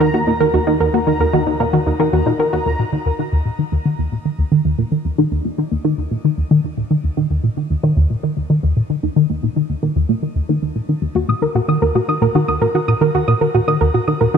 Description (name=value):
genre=ambient, sequencer-driven space music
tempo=113 BPM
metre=4/4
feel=straight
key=Eb minor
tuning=A4 = 440 Hz
part: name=soft round pluck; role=arpeggios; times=0.0-2.6, 11.2-14.4 s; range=Eb4 to Eb6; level=-18 LUFS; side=moving between left 3 dB and right 5 dB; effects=chorus, auto-pan, analog delay, shimmer reverb
part: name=tight sequenced synth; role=riff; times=0.0-14.4 s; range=Eb2 to Eb3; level=-16 LUFS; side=left 1 dB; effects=chorus, phaser, analog delay
part: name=analog drone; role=bass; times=0.0-2.6 s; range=Eb2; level=-29 LUFS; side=equal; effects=chorus
part: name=bubbling stepped-filter texture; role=texture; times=0.0-2.7 s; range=Bb5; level=-28 LUFS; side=equal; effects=chorus, built-in reverb, shimmer reverb
room=moderate plate reverb, RT60 2.8 s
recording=none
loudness=-15 LUFS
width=side -7 dB against mid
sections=0.0-2.7 A section; 2.7-14.4 B section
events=none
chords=0.0 Ebm; 2.7 Eb5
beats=0.01 | 0.54 1.07 1.60 2.13 | 2.66 3.19 3.72 4.25 | 4.79 5.32 5.85 6.38 | 6.91 7.44 7.97 8.50 | 9.03 9.56 10.10 10.63 | 11.16 11.69 12.22 12.75 | 13.28 13.81 14.34